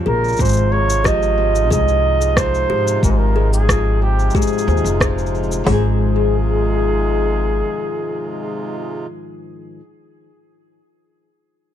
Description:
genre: folktronica.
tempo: 91 BPM.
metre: 4/4.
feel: straight.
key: Ab major.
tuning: A4 = 440 Hz.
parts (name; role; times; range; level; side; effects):
hand-pumped harmonium; sustained chords; 0.0-9.1 s; Bb2 to F4; -28 LUFS; right 3 dB; none.
nylon-string guitar; arpeggios; 0.0-9.8 s; Ab2 to Ab4; -24 LUFS; left 2 dB; tape echo.
mellow flugelhorn; melody; 0.1-9.1 s; G4 to Eb5; -21 LUFS; right 1 dB; tape echo.
kalimba; second line; 0.1-6.0 s; G4 to C5; -27 LUFS; left 7 dB; tape echo.
upright bass; bass; 0.1-7.6 s; F1 to Ab2; -18 LUFS; equal; none.
electronic shaker and rim click; drums; 0.2-5.6 s; none; -23 LUFS; equal; none.
organic electronic drum kit; drums; 0.4-5.8 s; hi-hat, kick drum, snare drum; -19 LUFS; equal; none.
room: studio ambience.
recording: dry, close 1970s-style studio recording.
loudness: -15 LUFS.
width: side -10 dB against mid.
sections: 0.0-5.7 A section; 5.7-8.3 B section.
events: none.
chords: 0.4 Ab6.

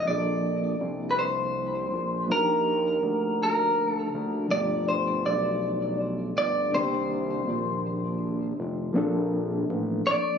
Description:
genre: slow six-eight R&B.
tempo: 54 BPM (dotted quarters).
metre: 6/8.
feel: straight.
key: Bb major.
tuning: A4 = 440 Hz.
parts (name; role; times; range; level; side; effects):
electric guitar at the edge of break-up; melody; 0.0-10.4 s; Bb4 to Eb5; -26 LUFS; equal; ping-pong delay.
reed electric piano; accompaniment; 0.0-10.4 s; B2 to A4; -31 LUFS; left 1 dB; overdrive, medium tremolo.
fat analog bass; bass; 0.0-10.1 s; F1 to Eb2; -30 LUFS; equal; none.
room: light reverb.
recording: recorded on a phone in the room, club reverb, compression, nothing above 7.8 kHz.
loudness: -24 LUFS.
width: side -7 dB against mid.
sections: 0.1-8.9 A section; 8.9-10.4 B section.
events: none.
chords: 0.1 Bbmaj9; 2.3 Ebmaj9; 4.5 G7; 6.7 Cm7; 8.9 Bbmaj9.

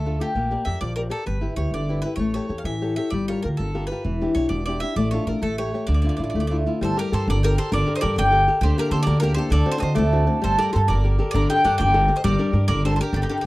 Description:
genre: italian folk, Italian serenade.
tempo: 131 BPM (dotted quarters).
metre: 6/8.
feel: rubato.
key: D harmonic minor, G harmonic minor from 6.8 s.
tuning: A4 = 440 Hz.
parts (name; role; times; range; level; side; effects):
bowl-back mandolin; melody; 0.0-13.4 s; G4 to G5; -26 LUFS; left 1 dB; none.
flamenco guitar; accompaniment; 0.0-13.4 s; B2 to D5; -25 LUFS; left 2 dB; none.
upright bass; bass; 0.0-13.2 s; E1 to D3; -22 LUFS; equal; none.
bowl-back mandolin; second line; 6.8-13.4 s; D4 to Eb5; -28 LUFS; right 4 dB; none.
room: little or no reverb.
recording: dry, close 1970s-style studio recording.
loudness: -19 LUFS.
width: side -18 dB against mid.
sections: 0.0-6.8 A section; 6.8-13.5 B section.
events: none.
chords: 0.3 Bb6; 1.3 G6; 2.2 A7; 3.1 Gm7; 4.0 Em7; 5.0 Dm/A; 5.4 A7; 5.9 Dmadd9; 6.8 Gmadd9; 8.6 Gm/D; 9.5 D7; 10.4 Gmadd9; 12.2 Gm.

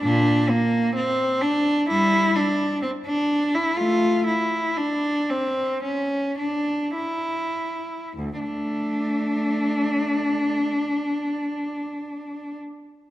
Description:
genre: classical, baroque-style suite movement for unaccompanied cello.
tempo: 48-68 BPM.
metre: 4/4.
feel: rubato.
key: D minor.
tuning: A4 = 440 Hz.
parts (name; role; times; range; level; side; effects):
rich cello; solo; 0.0-12.6 s; D2 to F4; -21 LUFS; equal; none.
room: wet scoring stage reverb, RT60 1.6 s.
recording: none.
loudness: -21 LUFS.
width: side -15 dB against mid.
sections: 0.0-8.2 A section; 8.2-12.8 B section.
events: slowing down 0.0-8.2.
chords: none.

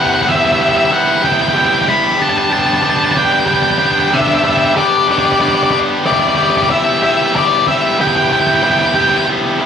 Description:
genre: rock.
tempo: 62 BPM (dotted quarters).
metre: 6/8.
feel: straight.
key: unclear.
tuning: A4 = 440 Hz.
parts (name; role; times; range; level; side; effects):
octave-fuzz lead guitar; melody; 0.0-9.3 s; D5 to B5; -13 LUFS; left 1 dB; distortion.
tight distorted guitar; riff; 0.0-9.7 s; G3 to G4; -14 LUFS; equal; distortion.
room: wet studio reverb, RT60 0.6 s.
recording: band playing live in one room.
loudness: -11 LUFS.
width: side -7 dB against mid.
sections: 0.0-9.7 A section.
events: none.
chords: 0.0 Em/G; 2.2 G; 6.0 Em/G.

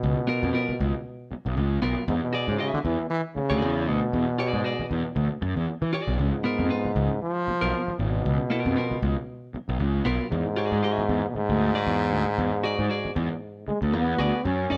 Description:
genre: funk.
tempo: 116 BPM.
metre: 4/4.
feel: swing 56% on 16ths.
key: unclear.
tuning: A4 = 440 Hz.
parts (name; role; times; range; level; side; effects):
clear trombone; melody; 0.0-14.8 s; G#2 to Db4; -30 LUFS; equal; none.
fuzz picked electric bass; bass; 0.0-14.8 s; Ab1 to E3; -28 LUFS; equal; overdrive.
clean electric guitar; accompaniment; 0.3-14.8 s; Cb4 to E5; -31 LUFS; equal; none.
room: light reverb.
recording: band playing live in one room.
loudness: -26 LUFS.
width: mono.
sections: 0.0-14.4 A section.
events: none.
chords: 0.0 Db6; 2.1 E9; 6.2 Db6; 10.3 E9.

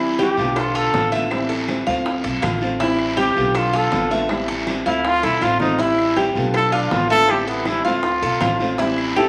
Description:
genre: latin, Cuban son and guajira.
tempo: 160 BPM.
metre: 4/4.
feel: straight.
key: A minor.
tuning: A4 = 442 Hz.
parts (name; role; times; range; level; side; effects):
nylon-string guitar; accompaniment; 0.0-9.3 s; D3 to F4; -26 LUFS; equal; none.
Cuban tres; arpeggios; 0.0-9.3 s; E4 to F5; -25 LUFS; equal; none.
claves; percussion; 0.0-9.2 s; none; -38 LUFS; equal; none.
warm trumpet; melody; 0.2-9.3 s; B3 to A4; -22 LUFS; equal; none.
bongos; percussion; 0.2-9.3 s; none; -30 LUFS; equal; none.
guiro; percussion; 0.2-9.3 s; none; -34 LUFS; equal; none.
upright bass; bass; 0.4-9.3 s; A1 to D2; -31 LUFS; equal; none.
room: wet large studio reverb, RT60 1.2 s.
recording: vinyl crackle.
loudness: -19 LUFS.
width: mono.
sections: 0.0-9.3 A section.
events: trumpet solo 0.0-9.3; drum fill 5.2-5.8.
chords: 0.0 Am7; 0.6 Bm7b5; 1.3 Am7; 2.1 Dm7; 2.8 Am7; 3.6 Bm7b5; 4.3 Am7; 5.0 Dm7; 5.8 Am7; 6.5 Bm7b5; 7.3 Am7; 8.0 Dm7.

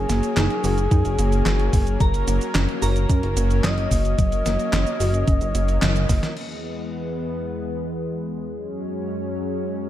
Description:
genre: synthwave.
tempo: 110 BPM.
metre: 4/4.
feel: straight.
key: unclear.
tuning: A4 = 441 Hz.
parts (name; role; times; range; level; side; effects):
expressive synth lead; melody; 0.0-6.3 s; G#4 to D#5; -28 LUFS; left 1 dB; chorus, tape echo.
soft synth bell; second line; 0.0-6.3 s; G#5 to D#6; -35 LUFS; equal; chorus, phaser, tape echo.
lush unison pad; sustained chords; 0.0-9.9 s; E2 to C#4; -28 LUFS; left 1 dB; chorus, sidechain pumping.
chorused synth bass; bass; 0.0-6.2 s; F#1 to F#2; -21 LUFS; equal; tube saturation, sidechain pumping.
warbly dusty pluck; arpeggios; 0.1-6.2 s; F#3 to F#4; -29 LUFS; right 4 dB; chorus, tape echo.
clean 12-bit digital drum machine; drums; 0.1-6.5 s; cabasa, crash cymbal, handclaps, hi-hat, snare drum; -27 LUFS; equal; gated reverb.
electronic kick drum; drums; 0.9-6.2 s; none; -20 LUFS; equal; none.
room: light reverb.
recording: none.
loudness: -20 LUFS.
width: side -12 dB against mid.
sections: 0.0-6.4 A section; 6.4-9.9 B section.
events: band accent 5.8; drum fill 6.1.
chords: 0.0 D#m/F#; 2.0 F#; 6.4 E; 8.6 F#sus2.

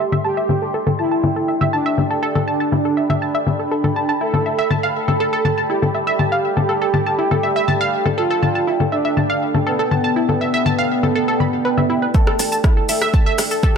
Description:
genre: melodic techno.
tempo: 121 BPM.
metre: 4/4.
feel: straight.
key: A minor.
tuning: A4 = 441 Hz.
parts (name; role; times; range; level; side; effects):
analog synth brass; melody; 0.0-13.8 s; B3 to A4; -21 LUFS; right 2 dB; chorus, sidechain pumping, ping-pong delay.
analog pluck; arpeggios; 0.0-13.7 s; E4 to B5; -21 LUFS; right 1 dB; chorus, cassette tape, sidechain pumping, ping-pong delay.
deep dark ambient pad; texture; 0.0-13.8 s; A4 to C6; -25 LUFS; equal; chorus, built-in reverb, sidechain pumping.
deep house drum kit; drums; 0.1-13.7 s; congas, hi-hat, rim click, shaker; -21 LUFS; left 3 dB; overdrive, high-pass filter on hats, low-pass filter on hats, high-pass filter on perc, low-pass filter on perc, high-pass filter on snare, low-pass filter on snare.
electronic kick drum; drums; 12.1-13.7 s; none; -14 LUFS; right 1 dB; overdrive.
tight sequencer bass; bass; 12.4-13.6 s; A1; -33 LUFS; right 1 dB; tube saturation, sidechain pumping, high-pass filter.
room: moderate concert hall reverb, RT60 2.2 s.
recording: none.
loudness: -16 LUFS.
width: side -6 dB against mid.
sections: 0.0-12.1 A section; 12.1-13.8 B section.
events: filter sweep on synth pluck 0.0-12.1; build-up 12.1-13.8.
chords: 0.0 Am; 4.2 G; 12.1 Am.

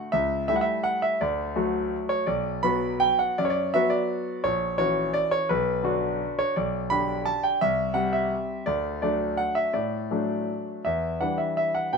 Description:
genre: classical, piano waltz.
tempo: 167 BPM.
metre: 3/4.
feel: uneven beats, rubato.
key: unclear.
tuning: A4 = 438 Hz.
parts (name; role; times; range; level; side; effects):
clear concert grand piano; solo; 0.0-12.0 s; A#1 to B5; -23 LUFS; equal; none.
room: light reverb.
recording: minimal, uncompressed stereo recording.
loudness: -23 LUFS.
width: side -5 dB against mid.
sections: 0.0-12.0 A section.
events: none.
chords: 0.1 A7/C#; 1.2 D; 2.3 Bm; 4.4 F#7/A#; 5.5 Bm; 6.6 G/B; 7.6 C; 8.7 D; 10.9 Em7.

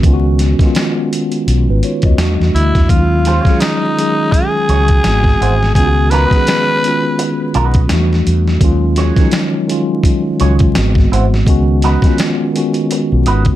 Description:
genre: R&B, neo-soul.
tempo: 84 BPM.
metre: 4/4.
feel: swing 61% on 16ths.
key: unclear.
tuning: A4 = 440 Hz.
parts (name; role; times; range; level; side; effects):
mellow tine electric piano; accompaniment; 0.0-13.6 s; Eb3 to Eb5; -16 LUFS; left 1 dB; medium stereo tremolo.
mellow fretless electric bass; bass; 0.0-13.6 s; Ab1 to E2; -13 LUFS; equal; wide subtle chorus.
dusty soul sampler-style drum kit; drums; 0.0-13.6 s; finger snaps, hi-hat, kick drum, snare drum; -15 LUFS; equal; none.
growling tenor saxophone; melody; 2.5-7.5 s; Eb4 to Cb5; -16 LUFS; equal; none.
electric guitar through a small old amp; second line; 3.3-13.4 s; Eb4 to Db5; -20 LUFS; right 5 dB; wah.
room: little or no reverb.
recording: vinyl crackle.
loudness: -11 LUFS.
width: side -14 dB against mid.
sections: 0.0-13.6 A section.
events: none.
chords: 0.0 Db9sus4; 2.2 Em11; 2.9 Ebm11; 5.0 Ab7alt; 5.8 Db9sus4; 7.9 Em11; 8.6 Ebm11; 10.8 Ab7alt; 11.5 Db9sus4.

